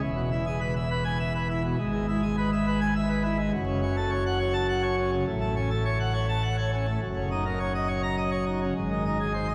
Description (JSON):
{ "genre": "classical, organ toccata", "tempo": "103 BPM", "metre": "3/4", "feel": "straight", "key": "E major", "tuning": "A4 = 440 Hz", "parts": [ { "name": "pipe organ, plenum", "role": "solo", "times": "0.0-9.5 s", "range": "E1 to Bb5", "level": "-27 LUFS", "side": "equal", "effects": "none" } ], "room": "wet church reverb, RT60 3.5 s", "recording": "recorded in a church or concert hall, vinyl crackle", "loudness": "-27 LUFS", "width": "mono", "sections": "0.0-9.5 A section", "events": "none", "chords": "0.0 E; 1.8 E/G#; 3.5 F#m; 5.3 F#m/A; 7.0 Ebm7/Gb; 8.8 Ab" }